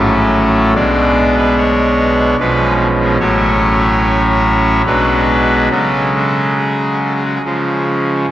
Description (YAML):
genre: classical, chorale-style piece for pipe organ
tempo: 72 BPM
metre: 3/4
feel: uneven beats, rubato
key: unclear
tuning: A4 = 440 Hz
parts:
  - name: pipe organ, trumpet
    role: solo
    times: 0.0-8.3 s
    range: A1 to D5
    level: -11 LUFS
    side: equal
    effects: none
room: wet cathedral reverb, RT60 4.4 s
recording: worn, warbling old tape, cassette tape, warbly pitch drift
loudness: -11 LUFS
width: side -13 dB against mid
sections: 0.0-8.3 A section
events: none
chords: 0.0 F#m/A; 0.8 G#dim/B; 2.4 C#7/B; 3.2 F#m/A; 4.9 G#m7b5/B; 5.7 C#sus4; 7.4 C#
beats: | 0.76 1.58 2.39 | 3.20 4.02 4.86 | 5.71 6.57 7.42 | 8.27